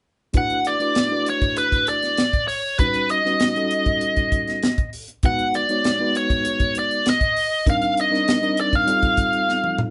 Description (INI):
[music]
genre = electric jazz fusion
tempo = 99 BPM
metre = 4/4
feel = straight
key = unclear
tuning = A4 = 440 Hz
[part]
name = barky reed electric piano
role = accompaniment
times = 0.3-9.9 s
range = G3 to C#5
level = -28 LUFS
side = equal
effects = overdrive, fast tremolo
[part]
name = tight funk drum kit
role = drums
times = 0.3-9.9 s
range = hi-hat, kick drum, snare drum, toms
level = -25 LUFS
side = equal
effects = none
[part]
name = biting lead guitar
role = melody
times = 0.4-9.8 s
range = B4 to F#5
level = -22 LUFS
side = equal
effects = overdrive
[sound]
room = moderate small room ambience, RT60 0.5 s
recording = band playing live in one room, nothing above 10.9 kHz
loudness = -20 LUFS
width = mono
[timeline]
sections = 0.4-9.9 A section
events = drum fill 9.5-9.9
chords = 0.4 D6; 2.8 Eb7alt; 5.2 G#m7; 7.7 Cm9; 8.9 F7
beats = | 0.36 0.97 1.58 2.19 | 2.80 3.40 4.01 4.62 | 5.23 5.84 6.45 7.05 | 7.66 8.27 8.88 9.48